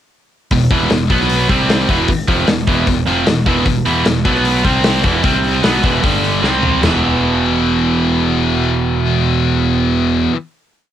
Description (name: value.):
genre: hard rock.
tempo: 152 BPM.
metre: 4/4.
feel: straight.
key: E minor.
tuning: A4 = 440 Hz.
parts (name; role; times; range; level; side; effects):
cranked stack guitar; riff; 0.5-10.3 s; E2 to C4; -16 LUFS; right 5 dB; overdrive, cassette tape.
scooped high-gain guitar; riff; 0.5-10.4 s; E2 to C4; -18 LUFS; left 9 dB; distortion, cassette tape.
modern bright picked electric bass; bass; 0.5-10.3 s; E1 to C2; -21 LUFS; left 1 dB; none.
big rock drum kit; drums; 0.5-6.9 s; china cymbal, hi-hat, kick drum, snare drum, toms; -17 LUFS; left 1 dB; cassette tape.
room: moderate booth ambience, RT60 0.2 s.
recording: home recording on cassette.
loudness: -12 LUFS.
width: side -10 dB against mid.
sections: 0.5-6.8 riff; 6.8-10.0 final chord.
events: drum fill 6.4-6.8.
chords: 0.5 E5; 1.1 B5; 1.5 C5; 1.9 E5; 4.3 B5; 4.6 C5; 5.0 E5; 5.2 C5; 5.6 E5; 6.0 G5; 6.4 C5; 6.8 E5.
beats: | 0.51 0.91 1.30 1.69 | 2.09 2.48 2.87 3.27 | 3.66 4.06 4.45 4.85 | 5.24 5.64 6.03 6.43 | 6.83 7.22 7.62 8.01 | 8.41 8.80 9.20 9.59.